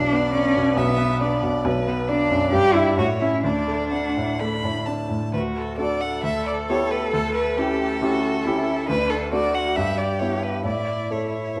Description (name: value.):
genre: quick classical-period movement for piano trio.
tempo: 135 BPM.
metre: 4/4.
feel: rubato.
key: D major.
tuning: A4 = 440 Hz.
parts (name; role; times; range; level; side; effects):
warm violin; melody; 0.0-11.6 s; A4 to B5; -29 LUFS; equal; none.
rich cello; second line; 0.0-11.6 s; B3 to A4; -27 LUFS; equal; none.
clear grand piano; accompaniment; 0.0-11.6 s; B1 to A4; -26 LUFS; equal; none.
room: wet recital hall reverb, RT60 1.4 s.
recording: none.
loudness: -22 LUFS.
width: mono.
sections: 0.0-5.3 A section; 5.3-11.6 B section.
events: none.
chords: 0.0 Bmadd9; 1.7 Bm; 2.5 Em7/G; 3.0 A; 3.4 D; 6.2 Em7/D; 7.1 A7/D; 8.9 D; 9.8 Em/G; 10.6 A.